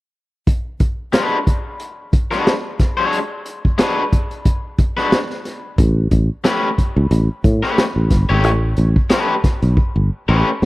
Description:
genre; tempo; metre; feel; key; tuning
funk; 90 BPM; 4/4; swing 56% on 16ths; unclear; A4 = 440 Hz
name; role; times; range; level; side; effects
crunchy breakbeat drum kit; drums; 0.5-10.7 s; hi-hat, kick drum, snare drum; -16 LUFS; equal; none
raw garage guitar; accompaniment; 1.1-10.5 s; G#3 to C#5; -20 LUFS; left 2 dB; overdrive, spring reverb
fingered electric bass; bass; 5.8-10.7 s; G1 to A2; -15 LUFS; equal; none
room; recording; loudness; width
small room ambience; dry, close 1970s-style studio recording; -15 LUFS; side -19 dB against mid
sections
0.5-10.7 A section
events
drum fill 9.8-10.7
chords
0.5 G#m7b5; 5.8 A9

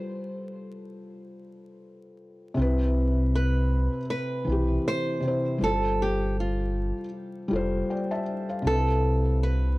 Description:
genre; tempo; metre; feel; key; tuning
lo-fi hip hop; 79 BPM; 4/4; swing 56% on 16ths; C major; A4 = 439 Hz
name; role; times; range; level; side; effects
nylon-string guitar; melody; 0.0-9.8 s; F4 to C5; -29 LUFS; right 2 dB; low-pass filter
felt-muted upright piano; accompaniment; 0.0-9.8 s; C3 to A5; -29 LUFS; left 1 dB; cassette tape, low-pass filter
sub bass with octave; bass; 2.6-9.8 s; F1 to C2; -25 LUFS; equal; none
room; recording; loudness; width
little or no reverb; vinyl crackle; -24 LUFS; side -20 dB against mid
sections
0.0-2.6 A section; 2.6-9.8 B section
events
none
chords
0.0 G9sus4; 2.6 Cmaj7; 5.6 G9sus4; 8.6 Cmaj7

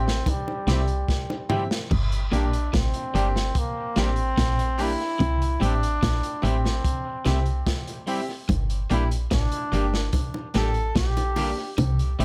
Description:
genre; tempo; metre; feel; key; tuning
roots reggae; 73 BPM; 4/4; straight; G dorian; A4 = 440 Hz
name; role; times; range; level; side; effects
bright trombone; melody; 0.0-11.7 s; G3 to A4; -32 LUFS; equal; tape echo, plate reverb
electric guitar at the edge of break-up; riff; 0.0-12.2 s; G2 to C3; -32 LUFS; equal; tremolo
woody FM bass; bass; 0.0-12.2 s; G1 to C2; -27 LUFS; equal; none
clean electric guitar; accompaniment; 0.1-12.2 s; G3 to G4; -37 LUFS; equal; tape echo, plate reverb
crunchy breakbeat drum kit; drums; 0.1-12.2 s; crash cymbal, hi-hat, kick drum, snare drum, toms; -31 LUFS; equal; tape echo
bongos; percussion; 0.3-1.7, 8.5-12.0 s; none; -36 LUFS; equal; none
bright concert grand piano; stabs; 0.7-12.2 s; Bb3 to G4; -34 LUFS; equal; plate reverb
room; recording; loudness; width
light reverb; none; -25 LUFS; mono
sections
0.0-1.9 A section; 1.9-12.2 A section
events
drum fill 1.1-1.9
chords
0.0 C; 1.9 Gm; 5.2 C; 8.5 Gm

